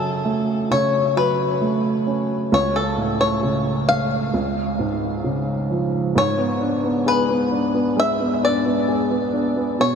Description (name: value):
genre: pop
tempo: 66 BPM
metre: 4/4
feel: straight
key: unclear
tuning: A4 = 439 Hz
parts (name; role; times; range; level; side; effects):
- bluegrass banjo; melody; 0.0-9.9 s; A4 to E#5; -22 LUFS; left 2 dB; analog delay
- warm upright piano; accompaniment; 0.0-10.0 s; C#2 to G#4; -20 LUFS; right 1 dB; none
room: wet huge ambient reverb, RT60 5.1 s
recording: dreamy mix soaked in reverb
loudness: -18 LUFS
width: side -6 dB against mid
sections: 0.0-6.2 A section; 6.2-10.0 B section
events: none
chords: 0.0 F#m; 2.5 C#aug; 4.3 C#; 6.2 G#dim